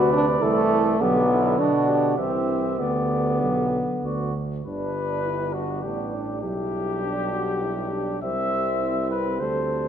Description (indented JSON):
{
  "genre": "classical, brass quintet",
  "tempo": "101 BPM",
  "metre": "3/4",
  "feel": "rubato",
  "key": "G major",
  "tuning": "A4 = 439 Hz",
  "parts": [
    { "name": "dark trumpet", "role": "melody", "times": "0.0-9.9 s", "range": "F#4 to F#5", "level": "-29 LUFS", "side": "left 4 dB", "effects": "none" },
    { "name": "mellow flugelhorn", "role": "second line", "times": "0.0-9.9 s", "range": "C4 to B4", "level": "-30 LUFS", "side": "right 6 dB", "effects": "none" },
    { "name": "warm French horn", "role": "accompaniment", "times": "0.0-9.9 s", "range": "A3 to A4", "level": "-25 LUFS", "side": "left 1 dB", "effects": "none" },
    { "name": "warm trombone", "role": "accompaniment", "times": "0.0-9.9 s", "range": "C3 to G3", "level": "-31 LUFS", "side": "right 4 dB", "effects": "none" },
    { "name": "bright bass trombone", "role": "bass", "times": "0.0-9.9 s", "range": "G1 to B2", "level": "-28 LUFS", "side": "right 2 dB", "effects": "none" }
  ],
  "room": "wet recital hall reverb, RT60 1.4 s",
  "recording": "recorded in a church or concert hall",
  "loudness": "-21 LUFS",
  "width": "side -8 dB against mid",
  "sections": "0.0-4.7 A section; 4.7-9.9 B section",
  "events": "none",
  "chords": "0.0 D7; 1.0 G/B; 2.2 C; 2.8 G/D; 4.0 D; 4.7 G; 6.4 G/B; 8.2 C"
}